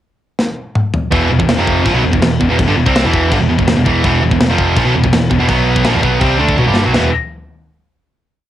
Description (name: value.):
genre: heavy metal.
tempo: 165 BPM.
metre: 4/4.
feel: straight.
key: E minor.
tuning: A4 = 440 Hz.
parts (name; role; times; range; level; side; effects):
tight metal drum kit; drums; 0.4-7.0 s; china cymbal, kick drum, snare drum, toms; -17 LUFS; left 1 dB; none.
distorted electric guitar; riff; 1.1-7.1 s; E2 to D4; -15 LUFS; right 6 dB; overdrive.
scooped high-gain guitar; riff; 1.1-7.1 s; E2 to D4; -17 LUFS; left 8 dB; distortion.
overdriven picked electric bass; bass; 1.1-7.1 s; E1 to D2; -17 LUFS; left 1 dB; none.
room: light reverb.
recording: home recording on cassette.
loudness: -11 LUFS.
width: side -12 dB against mid.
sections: 0.0-1.1 pickup bar; 1.1-6.9 riff; 6.9-8.4 final chord.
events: drum fill 0.4-1.1, 6.6-6.9.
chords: 0.0 N.C.; 1.1 Em; 5.5 B5; 5.9 Em; 6.9 E5.